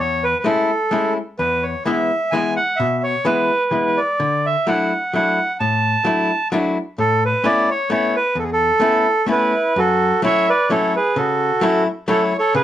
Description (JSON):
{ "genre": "musette", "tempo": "129 BPM", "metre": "3/4", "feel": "straight", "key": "A major", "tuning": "A4 = 438 Hz", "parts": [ { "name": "bandoneon", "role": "melody", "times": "0.0-12.6 s", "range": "E4 to A5", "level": "-17 LUFS", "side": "right 2 dB", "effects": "none" }, { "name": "archtop guitar, miked and amplified", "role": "accompaniment", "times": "0.0-12.6 s", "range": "E2 to E4", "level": "-20 LUFS", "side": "left 3 dB", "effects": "none" } ], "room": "moderate studio reverb, RT60 0.6 s", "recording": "worn, warbling old tape, cassette tape, warbly pitch drift", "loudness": "-16 LUFS", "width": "side -11 dB against mid", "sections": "0.0-9.8 A section; 9.8-12.6 B section", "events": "none", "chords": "0.0 Amaj7; 1.4 E; 4.2 Dadd9; 7.0 Aadd9; 9.8 F#m7" }